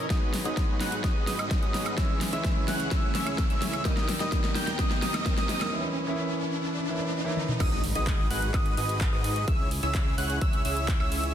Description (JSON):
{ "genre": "EDM, festival progressive house", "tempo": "128 BPM", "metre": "4/4", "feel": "straight", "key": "G# minor", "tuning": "A4 = 440 Hz", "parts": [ { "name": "dark baby grand piano", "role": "accompaniment", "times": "0.0-7.6 s", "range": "D#3 to E4", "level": "-33 LUFS", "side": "equal", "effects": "sidechain pumping, digital delay" }, { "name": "dark chamber string section", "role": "sustained chords", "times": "0.0-11.3 s", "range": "C#2 to B4", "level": "-42 LUFS", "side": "equal", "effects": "vintage 12-bit sampler grit, sidechain pumping" }, { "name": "wide unison lead", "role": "arpeggios", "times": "0.0-11.3 s", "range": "D#6 to G6", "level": "-33 LUFS", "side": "equal", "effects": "sidechain pumping, digital delay" }, { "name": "dense compressed supersaw", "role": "riff", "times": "0.0-11.3 s", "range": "A#3 to G5", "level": "-35 LUFS", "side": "right 1 dB", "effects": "sidechain pumping, low-pass filter, digital delay" }, { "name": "riser and impact", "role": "sound effects", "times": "0.1-9.5 s", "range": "none", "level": "-36 LUFS", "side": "equal", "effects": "none" }, { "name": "big-room dance drum kit", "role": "drums", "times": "0.1-11.3 s", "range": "crash cymbal, handclaps, hi-hat, snare drum, toms, woodblock", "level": "-32 LUFS", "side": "equal", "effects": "overdrive, studio reverb" }, { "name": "electronic kick drum", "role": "drums", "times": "0.1-11.0 s", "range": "none", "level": "-27 LUFS", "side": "equal", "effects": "overdrive, studio reverb" }, { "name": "fat analog bass", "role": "bass", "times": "7.6-11.3 s", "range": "G#1 to G#2", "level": "-32 LUFS", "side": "equal", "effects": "sidechain pumping" } ], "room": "moderate recital hall reverb, RT60 1.3 s", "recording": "dense, heavily limited modern master", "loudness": "-25 LUFS", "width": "side -10 dB against mid", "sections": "0.0-7.6 A section; 7.6-11.3 B section", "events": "build-up 0.0-7.6; drum fill 0.0-5.7, 7.4; filter sweep on analog synth lead 0.0-7.6; filter sweep on string section 0.0-7.6; riser 0.1-7.6; break 5.7-7.6; drop 7.6-11.3; impact 7.6-9.5", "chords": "0.1 G#m7; 2.0 C#m; 3.9 D#; 5.7 A#dim; 7.6 G#m7; 9.5 C#m", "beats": "| 0.10 0.57 1.04 1.51 | 1.98 2.45 2.92 3.38 | 3.85 4.32 4.79 5.26 | 5.73 6.20 6.67 7.13 | 7.60 8.07 8.54 9.01 | 9.48 9.95 10.41 10.88" }